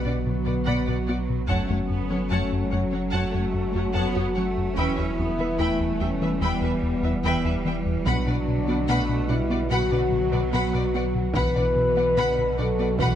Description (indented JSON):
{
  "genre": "cinematic, hybrid orchestral and electronic film score",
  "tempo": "73 BPM",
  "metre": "4/4",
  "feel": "straight",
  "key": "B minor",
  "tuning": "A4 = 441 Hz",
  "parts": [
    { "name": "warm symphonic violin section", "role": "second line", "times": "0.0-13.2 s", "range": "A4 to B5", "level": "-33 LUFS", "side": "left 2 dB", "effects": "none" },
    { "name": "warm symphonic viola section", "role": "accompaniment", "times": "0.0-13.2 s", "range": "B4 to F#5", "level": "-34 LUFS", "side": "right 2 dB", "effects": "none" },
    { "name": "glassy FM pad", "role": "sustained chords", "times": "0.0-13.2 s", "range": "D3 to B4", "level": "-34 LUFS", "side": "right 1 dB", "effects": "ensemble chorus, built-in reverb" },
    { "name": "mellow French horn section", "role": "sustained chords", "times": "0.0-13.2 s", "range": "B3 to B4", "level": "-27 LUFS", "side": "left 4 dB", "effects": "none" },
    { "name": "warm trombone section", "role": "sustained chords", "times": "0.0-13.2 s", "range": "B2 to F#3", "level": "-31 LUFS", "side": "right 4 dB", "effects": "none" },
    { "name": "pure sine sub bass", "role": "bass", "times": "0.0-13.2 s", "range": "E1 to B1", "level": "-31 LUFS", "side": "right 1 dB", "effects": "none" },
    { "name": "rich symphonic cello section", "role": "bass", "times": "0.0-13.2 s", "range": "D3 to C#4", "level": "-32 LUFS", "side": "right 4 dB", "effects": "none" },
    { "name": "resonant blip pluck", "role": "arpeggios", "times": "0.1-13.1 s", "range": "E3 to B4", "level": "-36 LUFS", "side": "right 1 dB", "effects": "none" },
    { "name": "rubbery square bass", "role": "riff", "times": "0.1-13.1 s", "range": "E2 to B3", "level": "-28 LUFS", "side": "left 1 dB", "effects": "none" },
    { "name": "taiko ensemble", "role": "drums", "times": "1.5-3.1, 8.1-13.2 s", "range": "none", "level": "-31 LUFS", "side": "equal", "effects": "none" }
  ],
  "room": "light reverb",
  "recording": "close, detailed microphones",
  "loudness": "-22 LUFS",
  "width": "side -10 dB against mid",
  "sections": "0.0-13.2 A section",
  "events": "none",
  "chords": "0.0 Bm; 1.5 F#m; 4.8 Em; 8.1 Bm"
}